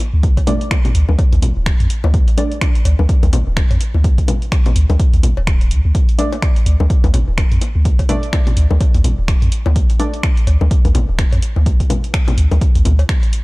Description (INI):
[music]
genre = minimal techno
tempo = 126 BPM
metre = 4/4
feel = swing 58% on 16ths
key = D minor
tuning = A4 = 441 Hz
[part]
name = punchy analog drum machine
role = drums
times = 0.0-13.4 s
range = finger snaps, hi-hat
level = -26 LUFS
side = right 1 dB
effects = none
[part]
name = bongos, cowbell and congas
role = percussion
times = 0.0-13.1 s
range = none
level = -24 LUFS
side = left 3 dB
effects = overdrive, tape echo
[part]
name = punchy sub bass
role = bass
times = 0.1-13.0 s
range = D1 to F2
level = -14 LUFS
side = equal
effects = sidechain pumping
[part]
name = electronic kick drum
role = drums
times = 0.2-13.2 s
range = none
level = -15 LUFS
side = equal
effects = none
[part]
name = filtered dub chord stab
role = stabs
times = 0.5-2.5, 6.2-10.1 s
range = A3 to D5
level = -25 LUFS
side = right 2 dB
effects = chorus, cassette tape, tape echo
[sound]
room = little or no reverb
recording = dark, warm production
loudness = -12 LUFS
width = side -23 dB against mid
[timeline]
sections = 0.0-13.4 A section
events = none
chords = 0.0 D5